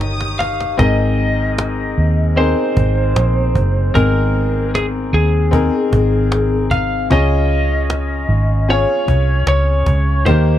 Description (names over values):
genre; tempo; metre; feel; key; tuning
pop ballad; 76 BPM; 4/4; straight; unclear; A4 = 439 Hz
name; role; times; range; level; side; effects
lightly driven lead guitar; melody; 0.0-10.6 s; Ab4 to F5; -20 LUFS; equal; none
warm studio violin section; second line; 0.0-0.7 s; Eb6; -27 LUFS; equal; none
bright upright piano; accompaniment; 0.0-10.6 s; Ab2 to Db5; -20 LUFS; left 4 dB; none
warm studio string section; sustained chords; 0.0-0.8 s; Eb3 to Bb4; -35 LUFS; right 3 dB; none
vintage muted fingered electric bass; bass; 0.0-10.6 s; Gb1 to Eb2; -16 LUFS; right 1 dB; none
cajon; drums; 0.0-10.4 s; none; -20 LUFS; right 1 dB; none
room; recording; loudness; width
little or no reverb; dry, close 1970s-style studio recording; -13 LUFS; side -11 dB against mid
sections
0.8-10.6 A section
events
drum fill 0.0-0.8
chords
0.0 Eb; 0.8 Abadd9; 7.1 Db